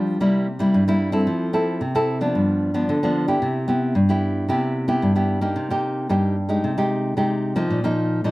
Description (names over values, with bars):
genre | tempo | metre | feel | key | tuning
samba | 112 BPM | 4/4 | straight | C major | A4 = 440 Hz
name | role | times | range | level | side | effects
nylon-string guitar | solo | 0.0-8.3 s | G2 to A4 | -19 LUFS | equal | none
room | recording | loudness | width
light reverb | none | -19 LUFS | side -19 dB against mid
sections
0.0-5.6 A section; 5.6-8.3 B section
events
none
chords
0.2 C7; 1.3 Fmaj7; 2.4 G7; 3.4 Cmaj7; 5.6 Cm7; 6.6 Abmaj7/C; 7.7 Ebsus2/Bb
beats
0.21 0.75 | 1.28 1.82 2.35 2.89 | 3.42 3.96 4.50 5.03 | 5.56 6.10 6.63 7.17 | 7.70 8.24